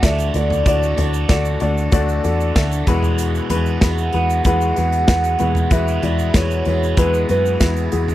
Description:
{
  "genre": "piano-driven pop",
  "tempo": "95 BPM",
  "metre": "4/4",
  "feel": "straight",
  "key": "E mixolydian",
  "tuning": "A4 = 439 Hz",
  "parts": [
    { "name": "hollow clarinet-like synth lead", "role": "melody", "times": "0.0-7.9 s", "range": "B4 to F#5", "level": "-21 LUFS", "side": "right 1 dB", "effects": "chorus, slapback echo" },
    { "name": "dark upright piano", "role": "accompaniment", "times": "0.0-8.1 s", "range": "A2 to E5", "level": "-22 LUFS", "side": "left 4 dB", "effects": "none" },
    { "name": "airy breathy pad", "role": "sustained chords", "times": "0.0-8.1 s", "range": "G#4 to D6", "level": "-33 LUFS", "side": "right 2 dB", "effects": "chorus" },
    { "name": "raw garage guitar", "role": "riff", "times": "0.0-8.1 s", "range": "D3 to A4", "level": "-28 LUFS", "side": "right 5 dB", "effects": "overdrive, phaser" },
    { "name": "vintage muted picked electric bass", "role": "bass", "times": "0.0-8.1 s", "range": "D2 to F#2", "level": "-20 LUFS", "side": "equal", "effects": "none" },
    { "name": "modern studio drum kit", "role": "drums", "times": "0.0-8.1 s", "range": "hi-hat, kick drum, snare drum, toms", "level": "-18 LUFS", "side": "equal", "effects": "none" },
    { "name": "egg shaker", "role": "percussion", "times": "0.0-8.1 s", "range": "none", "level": "-38 LUFS", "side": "right 13 dB", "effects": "none" }
  ],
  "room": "studio ambience",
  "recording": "dry, close 1970s-style studio recording",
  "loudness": "-15 LUFS",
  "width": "side -14 dB against mid",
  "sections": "0.0-8.1 A section",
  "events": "none",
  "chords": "0.0 D; 2.9 Eadd9"
}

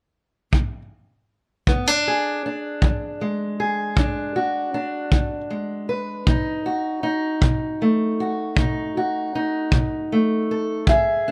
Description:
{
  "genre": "acoustic country blues, solo or duo",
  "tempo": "52 BPM (dotted quarters)",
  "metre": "12/8",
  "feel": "straight",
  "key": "unclear",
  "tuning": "A4 = 441 Hz",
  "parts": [
    { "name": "kick drum", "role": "drums", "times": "0.5-11.1 s", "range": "none", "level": "-22 LUFS", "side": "equal", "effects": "none" },
    { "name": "fingerpicked steel-string acoustic guitar", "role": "accompaniment", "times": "1.7-11.3 s", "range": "E2 to B4", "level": "-24 LUFS", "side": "equal", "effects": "none" },
    { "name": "lap resonator guitar", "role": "melody", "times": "10.9-11.3 s", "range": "E5", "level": "-20 LUFS", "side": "equal", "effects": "none" }
  ],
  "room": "little or no reverb",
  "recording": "close, detailed microphones",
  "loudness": "-22 LUFS",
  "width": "mono",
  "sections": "0.0-1.7 A section; 1.7-10.9 B section",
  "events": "none",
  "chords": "0.0 N.C.; 1.7 E7; 6.3 B7"
}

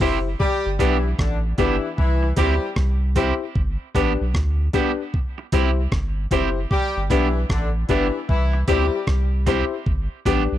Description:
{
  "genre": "roots reggae",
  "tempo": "76 BPM",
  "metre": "4/4",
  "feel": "swing 62% on 16ths",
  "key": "G major",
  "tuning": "A4 = 441 Hz",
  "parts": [
    { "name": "electric guitar at the edge of break-up", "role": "accompaniment", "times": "0.0-10.4 s", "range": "B3 to G4", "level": "-26 LUFS", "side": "right 8 dB", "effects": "tape echo" },
    { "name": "dark upright piano", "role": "stabs", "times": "0.0-10.5 s", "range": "D4 to C5", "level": "-24 LUFS", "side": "left 9 dB", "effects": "none" },
    { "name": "warm sub bass", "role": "bass", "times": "0.0-10.6 s", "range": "F#1 to D2", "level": "-22 LUFS", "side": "equal", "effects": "none" },
    { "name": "breakbeat sampler-style drum kit", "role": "drums", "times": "0.0-10.5 s", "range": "hi-hat, kick drum, rim click", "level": "-24 LUFS", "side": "equal", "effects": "none" },
    { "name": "warm horn section", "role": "second line", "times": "0.4-9.0 s", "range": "D3 to G4", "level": "-26 LUFS", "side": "left 2 dB", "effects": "tape echo" }
  ],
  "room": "little or no reverb",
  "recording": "dry, close 1970s-style studio recording",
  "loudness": "-19 LUFS",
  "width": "side -12 dB against mid",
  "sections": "0.0-10.6 A section",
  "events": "none",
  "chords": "0.4 G; 2.0 C; 3.6 G; 5.1 C; 6.7 G; 8.3 C; 9.9 G"
}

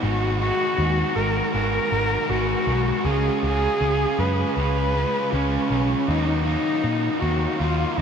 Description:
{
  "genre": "post-rock",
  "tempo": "79 BPM",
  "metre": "4/4",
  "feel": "straight",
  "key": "G# dorian",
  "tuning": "A4 = 440 Hz",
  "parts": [
    { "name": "muted cello", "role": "melody", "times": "0.0-8.0 s", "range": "C#4 to B4", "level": "-23 LUFS", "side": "left 1 dB", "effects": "diffuse ambient delay" },
    { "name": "fuzz guitar", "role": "riff", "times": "0.0-8.0 s", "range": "G#2 to E#4", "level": "-26 LUFS", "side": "right 1 dB", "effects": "distortion" },
    { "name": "picked electric bass", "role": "bass", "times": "0.0-8.0 s", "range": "G#1 to A#2", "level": "-24 LUFS", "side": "equal", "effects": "none" }
  ],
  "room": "wet cathedral reverb, RT60 5.5 s",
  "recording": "dreamy mix soaked in reverb",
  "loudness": "-20 LUFS",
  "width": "side -7 dB against mid",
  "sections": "0.0-8.0 A section",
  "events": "none",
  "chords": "0.0 G#m9; 3.1 C#7; 6.1 D#m"
}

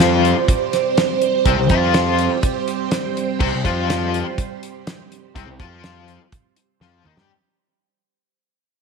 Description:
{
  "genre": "psychedelic rock",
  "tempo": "123 BPM",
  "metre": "4/4",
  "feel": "straight",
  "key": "unclear",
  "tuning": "A4 = 440 Hz",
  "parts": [
    { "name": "string machine, full ensemble", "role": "sustained chords", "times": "0.0-7.3 s", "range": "G3 to C5", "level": "-21 LUFS", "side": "right 8 dB", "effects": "phaser, ensemble chorus" },
    { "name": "crunchy overdriven guitar", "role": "riff", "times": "0.0-7.3 s", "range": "C3 to G4", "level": "-20 LUFS", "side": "left 10 dB", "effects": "tremolo" },
    { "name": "fuzz picked electric bass", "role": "bass", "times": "0.0-7.3 s", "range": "C2 to G2", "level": "-21 LUFS", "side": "right 2 dB", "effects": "overdrive" },
    { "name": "damped 70s drum kit", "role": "drums", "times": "0.0-7.3 s", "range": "crash cymbal, hi-hat, kick drum, snare drum, toms", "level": "-21 LUFS", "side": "right 1 dB", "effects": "none" }
  ],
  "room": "moderate echo chamber reverb, RT60 1.7 s, small room ambience",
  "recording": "1960s-style stereo with parts hard left and right",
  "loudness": "-16 LUFS",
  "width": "side -5 dB against mid",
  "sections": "0.0-7.3 A section",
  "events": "fade-out 0.0-7.3; drum fill 6.8-7.3",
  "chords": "0.0 C5"
}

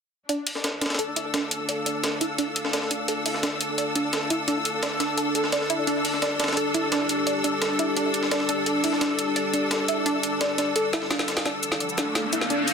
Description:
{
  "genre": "dark technical drum and bass",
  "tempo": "172 BPM",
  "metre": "4/4",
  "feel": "straight",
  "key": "D minor",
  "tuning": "A4 = 440 Hz",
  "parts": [
    { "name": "deep dark ambient pad", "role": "sustained chords", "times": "1.2-12.7 s", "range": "D4 to F5", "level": "-30 LUFS", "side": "equal", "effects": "chorus, built-in reverb" },
    { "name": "analog pluck", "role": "arpeggios", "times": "0.3-12.6 s", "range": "D4 to D5", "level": "-28 LUFS", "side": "right 1 dB", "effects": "chorus, phaser, ping-pong delay" },
    { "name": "breakbeat sampler-style drum kit", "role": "drums", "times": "0.3-11.4 s", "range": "hi-hat, snare drum", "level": "-30 LUFS", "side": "left 1 dB", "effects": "high-pass filter on hats, high-pass filter on snare" },
    { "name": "drum and bass drum kit", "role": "drums", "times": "0.3-12.7 s", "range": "cabasa, hi-hat, snare drum", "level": "-28 LUFS", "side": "equal", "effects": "overdrive" },
    { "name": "clear studio string section", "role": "texture", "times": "0.3-12.7 s", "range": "D4 to E6", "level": "-28 LUFS", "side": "left 1 dB", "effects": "none" },
    { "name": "riser", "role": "sound effects", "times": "11.8-12.7 s", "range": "none", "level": "-28 LUFS", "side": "right 2 dB", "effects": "none" }
  ],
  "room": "moderate plate reverb, RT60 2.0 s, digital ambience",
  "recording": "dense, heavily limited modern master",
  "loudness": "-22 LUFS",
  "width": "side -6 dB against mid",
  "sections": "0.3-11.5 A section; 11.5-12.7 B section",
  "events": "filter sweep on synth arpeggio sound 0.3-11.5; drum fill 10.9-11.5, 11.5-12.7; build-up 11.5-12.7; riser 11.8-12.7",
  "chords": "0.3 Dm"
}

